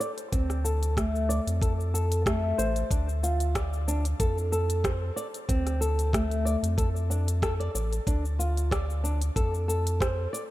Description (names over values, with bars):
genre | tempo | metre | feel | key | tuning
organic downtempo | 93 BPM | 4/4 | swing 54% on 16ths | D minor pentatonic | A4 = 439 Hz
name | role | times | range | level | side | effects
flamenco guitar | arpeggios | 0.0-10.4 s | A3 to D5 | -30 LUFS | equal | vintage 12-bit sampler grit, low-pass filter, ping-pong delay, shimmer reverb
afro-pop drum kit | drums | 0.0-10.5 s | hi-hat, rim click, shaker | -34 LUFS | equal | none
warm sub bass | bass | 0.3-10.3 s | A1 to F2 | -27 LUFS | equal | sidechain pumping
electronic kick drum | drums | 0.3-10.1 s | none | -28 LUFS | equal | none
room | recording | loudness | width
light reverb, digital ambience | none | -25 LUFS | side -16 dB against mid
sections
0.0-10.5 A section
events
filter sweep on nylon-string guitar 0.0-10.5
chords
0.0 Dm7